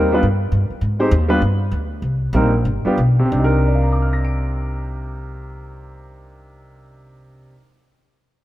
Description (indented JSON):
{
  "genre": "jazz, big band swing",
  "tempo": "174-205 BPM",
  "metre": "4/4",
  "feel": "swing 61% on 8ths",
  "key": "C minor",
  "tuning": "A4 = 440 Hz",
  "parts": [
    { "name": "warm upright piano", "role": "accompaniment", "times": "0.0-7.8 s", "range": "C3 to D7", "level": "-20 LUFS", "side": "equal", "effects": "none" },
    { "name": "upright bass", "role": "bass", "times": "0.0-7.5 s", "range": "G1 to Ab2", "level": "-18 LUFS", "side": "equal", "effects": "none" }
  ],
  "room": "light reverb, studio ambience",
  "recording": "rough home demo mix",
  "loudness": "-16 LUFS",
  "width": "side -15 dB against mid",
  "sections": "0.0-3.3 A section; 3.3-6.1 B section",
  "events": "slowing down 0.8-3.3",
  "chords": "0.2 N.C.; 0.8 Abmaj7; 1.4 G5; 2.0 Cm7; 2.6 G7; 3.3 Cm7"
}